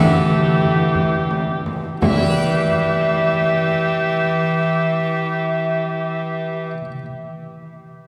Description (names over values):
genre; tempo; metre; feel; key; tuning
classical, renaissance-style consort dance; 54 BPM (dotted quarters); 6/8; straight; E minor; A4 = 435 Hz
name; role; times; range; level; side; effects
alto recorder; melody; 0.0-6.7 s; E5 to F#5; -25 LUFS; equal; none
warm cor anglais; second line; 0.0-6.7 s; G4; -27 LUFS; equal; none
harpsichord; accompaniment; 0.0-7.1 s; E3 to G5; -28 LUFS; equal; none
rich cello; bass; 0.0-6.7 s; E3; -24 LUFS; equal; none
frame drum; percussion; 0.9-2.4 s; none; -26 LUFS; equal; none
room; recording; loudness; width
wet cathedral reverb, RT60 6.0 s; heard from further back in the room; -19 LUFS; mono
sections
0.0-2.0 A section; 2.0-6.5 B section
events
slowing down 0.0-2.0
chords
0.0 Em